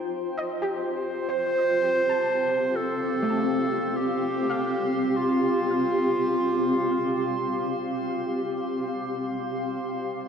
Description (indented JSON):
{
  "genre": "ambient",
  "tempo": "50 BPM",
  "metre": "4/4",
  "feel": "straight",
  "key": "unclear",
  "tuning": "A4 = 441 Hz",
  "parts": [
    { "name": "granular cloud pad", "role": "sustained chords", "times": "0.0-10.3 s", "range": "C4 to G5", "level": "-27 LUFS", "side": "equal", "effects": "built-in reverb" },
    { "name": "soft round pluck", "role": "arpeggios", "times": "0.0-7.8 s", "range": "A3 to A5", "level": "-32 LUFS", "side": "right 1 dB", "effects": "ensemble chorus, tape echo" },
    { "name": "drifting glass-harmonics texture", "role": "texture", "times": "0.0-10.3 s", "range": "A4 to C6", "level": "-43 LUFS", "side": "right 1 dB", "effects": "chorus, built-in reverb" },
    { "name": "warm clarinet", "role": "melody", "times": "1.0-8.8 s", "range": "F4 to C5", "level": "-27 LUFS", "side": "right 1 dB", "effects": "tape echo" }
  ],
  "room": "wet lush hall reverb, RT60 2.8 s",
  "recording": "dark, warm production",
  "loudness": "-23 LUFS",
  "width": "side -7 dB against mid",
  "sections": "0.0-10.3 A section",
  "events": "fade-in on synth texture 0.0-10.3",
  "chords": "0.4 Cm",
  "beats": "| 0.37 1.57 2.77 3.97 | 5.17 6.37 7.57 8.77 | 9.97"
}